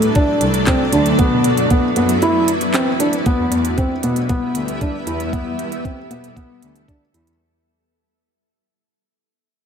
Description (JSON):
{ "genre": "piano and strings electronica", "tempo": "116 BPM", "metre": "4/4", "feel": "straight", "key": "E minor", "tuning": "A4 = 437 Hz", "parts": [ { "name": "granular cloud pad", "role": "sustained chords", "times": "0.0-7.4 s", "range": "F#3 to E5", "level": "-21 LUFS", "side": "equal", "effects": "built-in reverb, sidechain pumping" }, { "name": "felt-muted upright piano", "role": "riff", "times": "0.0-7.3 s", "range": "B3 to E4", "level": "-18 LUFS", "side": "equal", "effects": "ping-pong delay" }, { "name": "warm chamber cello section", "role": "bass", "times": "0.0-7.3 s", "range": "C2 to B2", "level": "-23 LUFS", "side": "equal", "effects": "sidechain pumping" }, { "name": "organic electronic drum kit", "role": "drums", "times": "0.0-7.4 s", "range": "handclaps, hi-hat", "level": "-25 LUFS", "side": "right 2 dB", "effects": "none" }, { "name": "electronic kick drum", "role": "drums", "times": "0.2-7.0 s", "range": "none", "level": "-19 LUFS", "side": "equal", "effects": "none" } ], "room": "light reverb, digital ambience", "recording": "none", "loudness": "-15 LUFS", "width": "side -7 dB against mid", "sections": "0.0-3.3 A section; 3.3-7.4 B section", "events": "drop 0.0-3.3; fade-out 3.3-7.4", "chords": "0.0 D; 1.2 Bsus4; 2.2 Dadd9; 3.3 Em" }